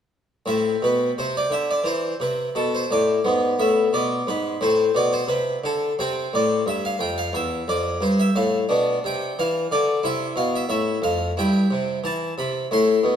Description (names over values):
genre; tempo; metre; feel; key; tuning
classical, baroque-style suite movement for harpsichord; 88 BPM; 4/4; rubato; A minor; A4 = 440 Hz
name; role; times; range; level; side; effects
harpsichord; solo; 0.5-13.2 s; E2 to C6; -20 LUFS; equal; none
room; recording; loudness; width
wet recital hall reverb, RT60 1.7 s; none; -20 LUFS; side -8 dB against mid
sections
0.5-13.2 A section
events
none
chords
0.5 Am; 3.2 G#dim; 4.6 Am; 6.0 C; 8.7 Bdim; 10.0 C; 11.4 Em/G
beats
| 0.46 1.16 1.85 2.55 | 3.24 3.93 4.61 5.29 | 5.97 6.66 7.34 8.02 | 8.70 9.38 10.04 10.71 | 11.38 12.05 12.72